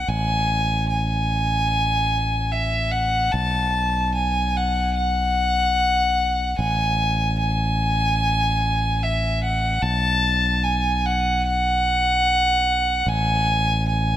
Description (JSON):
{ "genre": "post-rock", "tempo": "74 BPM", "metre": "4/4", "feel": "straight", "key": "unclear", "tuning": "A4 = 440 Hz", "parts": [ { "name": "warm violin", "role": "melody", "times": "0.0-14.2 s", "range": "E5 to A5", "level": "-20 LUFS", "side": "equal", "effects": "plate reverb, analog delay" }, { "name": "modern bright fingered electric bass", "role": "bass", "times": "0.0-14.2 s", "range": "A1 to B1", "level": "-23 LUFS", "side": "equal", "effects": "none" } ], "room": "moderate large studio reverb, RT60 0.8 s, small room ambience", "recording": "none", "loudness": "-18 LUFS", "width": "side -12 dB against mid", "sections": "0.0-14.2 A section", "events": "none", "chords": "0.1 F#madd9/A (rootless); 3.3 B5; 6.6 F#madd9/A (rootless); 9.8 B5; 13.1 F#madd9/A (rootless)", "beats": "| 0.09 0.90 1.71 2.53 | 3.34 4.15 4.96 5.78 | 6.59 7.40 8.21 9.02 | 9.83 10.65 11.46 12.27 | 13.08 13.89" }